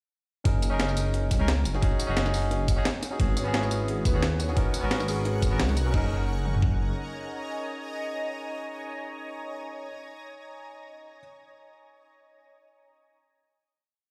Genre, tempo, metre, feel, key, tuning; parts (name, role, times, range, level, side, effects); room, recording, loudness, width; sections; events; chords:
liquid drum and bass; 175 BPM; 4/4; swing 54% on 16ths; F# major; A4 = 442 Hz
barky tine electric piano; accompaniment; 0.4-9.9 s; B3 to A#4; -35 LUFS; equal; dub echo
dark detuned saw bass; bass; 0.5-6.9 s; F#1 to D#2; -30 LUFS; equal
breakbeat sampler-style drum kit; drums; 0.5-6.0 s; crash cymbal, hi-hat, snare drum, tambourine; -34 LUFS; equal
drum and bass drum kit; drums; 0.5-6.7 s; kick drum, toms; -28 LUFS; equal
shimmering ambient pad; sustained chords; 4.3-9.4 s; C#5 to C#6; -40 LUFS; equal; chorus, built-in reverb, phaser, sidechain pumping
felt-muted upright piano; arpeggios; 3.4-6.1 s; D#4 to C#5; -42 LUFS; equal; digital delay
little or no reverb; played on a big sound system in a bare room, stone room reverb; -27 LUFS; mono
0.5-5.9 drop; 5.9-8.7 final chord
drop 0.5-5.9
0.5 F#69; 1.7 G#7sus4/F#; 3.2 E6/G#; 4.6 G#m11; 5.9 F#69